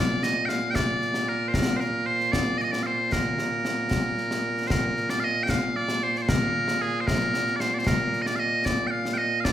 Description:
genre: scottish traditional, Scottish pipe music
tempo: 76 BPM (dotted quarters)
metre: 6/8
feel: straight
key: Bb major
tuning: A4 = 439 Hz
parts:
  - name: loud bright bagpipes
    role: melody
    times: 0.0-9.5 s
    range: Bb2 to G5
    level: -24 LUFS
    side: right 1 dB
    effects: none
  - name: concert snare drum and concert bass drum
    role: drums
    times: 0.2-9.5 s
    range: none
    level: -28 LUFS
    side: left 1 dB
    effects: none
room: moderate recital hall reverb, RT60 1.2 s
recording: recorded in a church or concert hall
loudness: -23 LUFS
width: side -11 dB against mid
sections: 0.0-4.7 A section; 4.7-9.5 B section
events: none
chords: none

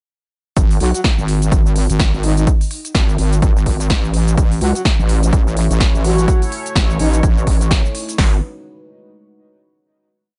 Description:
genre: bass house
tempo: 126 BPM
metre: 4/4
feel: swing 59% on 16ths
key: unclear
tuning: A4 = 439 Hz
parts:
  - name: wobble bass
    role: bass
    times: 0.6-8.4 s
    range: G#1 to C#2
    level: -18 LUFS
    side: equal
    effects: chorus, tube saturation, sidechain pumping
  - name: big-room dance drum kit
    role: drums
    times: 0.6-8.3 s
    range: hi-hat, kick drum, snare drum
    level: -17 LUFS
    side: equal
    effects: none
  - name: big-room dance drum kit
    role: drums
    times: 0.6-8.2 s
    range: hi-hat, shaker, snare drum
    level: -25 LUFS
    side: equal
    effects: none
  - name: breathy flute-like synth lead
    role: melody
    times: 0.8-7.2 s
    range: D#4 to F#4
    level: -26 LUFS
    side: equal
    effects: chorus, tape echo
  - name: sweeping resonant pad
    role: sustained chords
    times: 4.4-8.4 s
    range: G#3 to C#5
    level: -31 LUFS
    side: equal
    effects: chorus, sidechain pumping
room: little or no reverb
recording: nothing above 10.7 kHz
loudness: -16 LUFS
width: mono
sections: 0.6-8.2 drop; 8.2-10.1 final chord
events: drop 0.6-8.2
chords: 0.6 N.C.; 4.4 A; 8.2 G#m7

